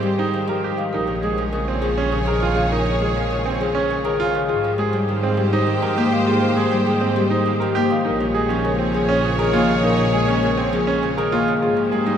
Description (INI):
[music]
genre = classical, minimalist pattern music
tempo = 101 BPM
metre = 3/4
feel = straight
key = unclear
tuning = A4 = 440 Hz
[part]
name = marimba with soft mallets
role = melody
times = 0.0-12.1 s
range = G4 to F5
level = -24 LUFS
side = left 4 dB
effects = none
[part]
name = Celtic harp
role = accompaniment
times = 0.0-12.2 s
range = Db3 to Bb3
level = -23 LUFS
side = left 2 dB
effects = none
[part]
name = rich symphonic string section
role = sustained chords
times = 0.0-12.2 s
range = G4 to Db5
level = -26 LUFS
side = equal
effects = none
[part]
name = bright grand piano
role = arpeggios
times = 0.0-12.2 s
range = C4 to Bb4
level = -24 LUFS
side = right 5 dB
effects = none
[part]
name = rich symphonic double bass section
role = bass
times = 0.0-12.2 s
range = Bb1 to Ab2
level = -25 LUFS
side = right 1 dB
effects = none
[sound]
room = wet huge ambient reverb, RT60 7.3 s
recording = in a vast, echoing space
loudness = -17 LUFS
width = side -8 dB against mid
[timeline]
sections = 0.0-12.2 A section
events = none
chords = 0.0 Abmaj9; 0.9 Bbm7; 4.5 Abmaj9; 8.1 Bbm7; 11.6 Abmaj9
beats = 0.33 | 0.93 1.52 2.11 | 2.71 3.30 3.90 | 4.49 5.08 5.68 | 6.27 6.87 7.46 | 8.05 8.65 9.24 | 9.84 10.43 11.02 | 11.62